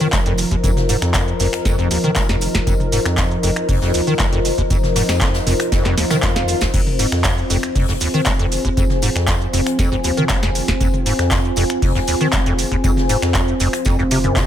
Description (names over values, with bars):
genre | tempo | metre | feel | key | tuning
acid house | 118 BPM | 4/4 | straight | F minor | A4 = 440 Hz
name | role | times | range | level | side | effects
warm analog pad | sustained chords | 0.0-14.5 s | F3 to Bb4 | -24 LUFS | equal | chorus, sidechain pumping
deep acid bass | riff | 0.0-14.5 s | Eb2 to Ab3 | -22 LUFS | equal | ensemble chorus, cassette tape, digital delay
booming analog drum machine | drums | 0.0-14.5 s | crash cymbal, finger snaps, handclaps, hi-hat, shaker, snare drum, toms | -22 LUFS | equal | none
deep dark ambient pad | texture | 0.0-14.5 s | F4 to Ab5 | -24 LUFS | left 2 dB | chorus, built-in reverb, sidechain pumping
round analog bass | bass | 0.1-14.5 s | F1 to F2 | -23 LUFS | equal | sidechain pumping
electronic kick drum | drums | 0.1-14.5 s | none | -20 LUFS | equal | none
jazz brush drum kit | drums | 0.1-14.5 s | hi-hat, snare drum, tambourine | -32 LUFS | left 2 dB | sidechain pumping on hats, high-pass filter on hats, high-pass filter on snare, sidechain pumping on perc, high-pass filter on perc, high-pass filter on room
swell | sound effects | 5.9-6.7 s | none | -26 LUFS | equal | none
room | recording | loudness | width
light reverb, digital ambience | none | -15 LUFS | side -10 dB against mid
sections
0.0-14.5 A section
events
swell 5.9-6.7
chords
0.0 Fm